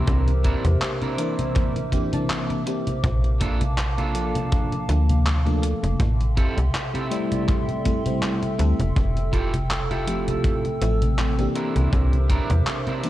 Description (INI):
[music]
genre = vaporwave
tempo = 81 BPM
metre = 4/4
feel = swing 55% on 16ths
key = unclear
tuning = A4 = 439 Hz
[part]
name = FM electric piano with soft pad layer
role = accompaniment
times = 0.0-13.1 s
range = E3 to A5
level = -28 LUFS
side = left 1 dB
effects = tremolo, wide subtle chorus, tape echo
[part]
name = warbly tape-like pad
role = sustained chords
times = 0.0-13.1 s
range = A4 to E6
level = -31 LUFS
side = right 1 dB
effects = chorus, built-in reverb, vintage 12-bit sampler grit
[part]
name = electric guitar at the edge of break-up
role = riff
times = 0.0-13.1 s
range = Bb3 to Bb4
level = -32 LUFS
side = right 3 dB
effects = lush chorus, vintage 12-bit sampler grit, tape echo
[part]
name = slap-like FM bass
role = bass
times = 0.0-12.6 s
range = E1 to E2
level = -22 LUFS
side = equal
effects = tube saturation
[part]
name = detuned 8-bit digital drum machine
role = drums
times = 0.1-13.1 s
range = congas, handclaps, hi-hat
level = -28 LUFS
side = equal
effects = vintage 12-bit sampler grit
[part]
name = kick drum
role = drums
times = 0.1-12.5 s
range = none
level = -24 LUFS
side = equal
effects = vintage 12-bit sampler grit
[sound]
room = light reverb, digital ambience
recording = cassette tape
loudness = -20 LUFS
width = side -14 dB against mid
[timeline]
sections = 0.0-13.1 A section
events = none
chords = 0.0 C9; 3.0 Bbmaj7; 6.0 Am7; 9.0 Fmaj9; 11.6 C9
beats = | 0.07 0.81 1.56 2.30 | 3.04 3.78 4.52 5.26 | 6.00 6.74 7.48 8.22 | 8.96 9.70 10.44 11.19 | 11.93 12.67